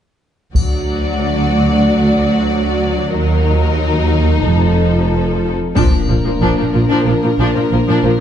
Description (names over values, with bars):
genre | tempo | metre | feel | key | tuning
cinematic, epic orchestral film score | 92 BPM | 4/4 | straight | unclear | A4 = 438 Hz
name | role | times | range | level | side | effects
warm symphonic double bass section | bass | 0.5-8.1 s | F1 to Eb2 | -18 LUFS | right 3 dB | none
warm symphonic violin section | melody | 0.6-8.2 s | A4 to D5 | -22 LUFS | left 5 dB | none
rich symphonic violin section | second line | 0.6-8.1 s | Bb3 to F#4 | -21 LUFS | left 4 dB | none
rich symphonic viola section | accompaniment | 0.6-8.2 s | F3 to F#3 | -21 LUFS | equal | none
warm symphonic cello section | bass | 0.6-8.1 s | D2 to Bb2 | -18 LUFS | right 1 dB | none
taiko ensemble | drums | 0.6-1.8, 5.8-7.0 s | none | -17 LUFS | left 1 dB | none
triangle | percussion | 0.6-1.8, 5.8-7.0 s | none | -35 LUFS | left 5 dB | none
dark French horn section | sustained chords | 5.7-8.2 s | Bb3 to D4 | -19 LUFS | left 2 dB | none
impact | sound effects | 5.8-8.2 s | none | -23 LUFS | equal | none
room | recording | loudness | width
moderate scoring stage reverb, RT60 1.7 s | dark, warm production, nothing above 10.5 kHz | -12 LUFS | side -9 dB against mid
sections
0.6-5.8 A section; 5.8-8.2 B section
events
build-up 5.8-8.2; impact 5.8-8.2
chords
0.6 D; 3.1 Ebm; 4.4 F7; 5.8 Bb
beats
| 0.55 1.20 1.85 2.50 | 3.14 3.79 4.44 5.09 | 5.75 6.41 7.06 7.71